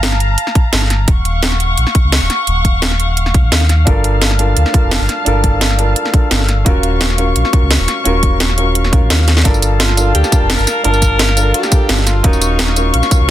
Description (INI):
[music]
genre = liquid drum and bass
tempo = 172 BPM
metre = 4/4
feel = straight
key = G minor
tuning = A4 = 440 Hz
[part]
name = dark studio string section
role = sustained chords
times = 0.0-13.3 s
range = F5 to Db6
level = -20 LUFS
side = left 2 dB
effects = sidechain pumping
[part]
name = sub bass with octave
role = bass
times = 0.0-13.3 s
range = Eb1 to Eb2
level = -14 LUFS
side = equal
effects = none
[part]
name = drum and bass drum kit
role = drums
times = 0.0-13.2 s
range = hi-hat, snare drum, tambourine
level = -16 LUFS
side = right 1 dB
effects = overdrive
[part]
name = electronic kick drum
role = drums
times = 0.6-13.2 s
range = none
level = -12 LUFS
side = equal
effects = none
[part]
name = dark baby grand piano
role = accompaniment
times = 3.9-13.3 s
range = Db4 to A5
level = -19 LUFS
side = right 1 dB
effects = tape echo
[part]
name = breathy alto saxophone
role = melody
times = 9.8-12.9 s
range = Eb4 to Bb4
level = -20 LUFS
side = right 1 dB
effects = digital delay
[sound]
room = light reverb, studio ambience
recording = dense, heavily limited modern master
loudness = -11 LUFS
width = side -12 dB against mid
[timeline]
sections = 0.0-13.3 A section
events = drum fill 9.3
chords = 0.0 Gm7; 1.1 Ebm7; 3.9 Gm7; 6.7 Ebm7; 9.4 Gm7; 12.2 Ebm7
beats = 0.03 0.38 0.73 | 1.08 1.43 1.77 2.12 | 2.47 2.82 3.17 3.52 | 3.87 4.22 4.57 4.92 | 5.26 5.61 5.96 6.31 | 6.66 7.01 7.36 7.71 | 8.05 8.40 8.75 9.10 | 9.45 9.80 10.15 10.50 | 10.85 11.19 11.54 11.89 | 12.24 12.59 12.94 13.29